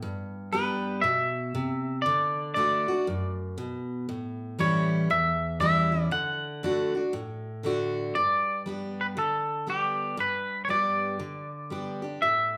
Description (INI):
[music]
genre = country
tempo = 118 BPM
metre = 4/4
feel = swing 63% on 8ths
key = G major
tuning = A4 = 441 Hz
[part]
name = picked steel-string acoustic guitar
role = accompaniment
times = 0.0-12.6 s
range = E2 to G4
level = -32 LUFS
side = equal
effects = none
[part]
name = twangy electric guitar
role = melody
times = 0.5-12.6 s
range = G4 to F#5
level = -29 LUFS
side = equal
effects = none
[sound]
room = moderate large studio reverb, RT60 0.9 s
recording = band playing live in one room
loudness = -28 LUFS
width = mono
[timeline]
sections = 0.0-8.1 A section; 8.1-12.6 B section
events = none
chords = 0.0 G; 2.0 D; 4.1 A7; 6.1 D; 8.1 G